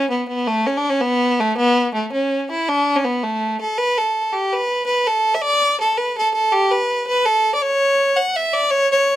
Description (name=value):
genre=celtic folk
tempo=109 BPM (dotted quarters)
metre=6/8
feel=straight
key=unclear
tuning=A4 = 438 Hz
part: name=clear fiddle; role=solo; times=0.0-9.2 s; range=A3 to F#5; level=-16 LUFS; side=equal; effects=none
room=light reverb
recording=none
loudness=-16 LUFS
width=side -13 dB against mid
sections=0.0-3.8 A section; 3.8-9.2 B section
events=none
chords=none